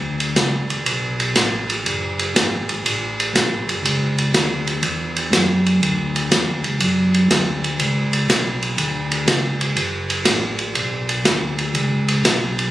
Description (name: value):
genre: soul jazz organ trio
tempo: 121 BPM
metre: 4/4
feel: swing 67% on 8ths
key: F# minor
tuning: A4 = 440 Hz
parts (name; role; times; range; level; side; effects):
- mellow tonewheel organ; bass; 0.0-12.7 s; F#1 to F#2; -22 LUFS; equal; overdrive, chorus vibrato, slow rotary speaker
- open jazz drum kit; drums; 0.2-12.7 s; hi-hat, ride cymbal, snare drum; -18 LUFS; right 1 dB; none
room: moderate recital hall reverb, RT60 1.3 s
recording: recorded on a phone in the room, club reverb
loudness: -17 LUFS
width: side -15 dB against mid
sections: 0.0-12.7 A section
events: none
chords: none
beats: 0.38 0.87 1.37 | 1.86 2.36 2.85 3.35 | 3.84 4.33 4.83 5.32 | 5.82 6.31 6.81 7.30 | 7.80 8.29 8.79 9.28 | 9.77 10.27 10.76 11.26 | 11.75 12.25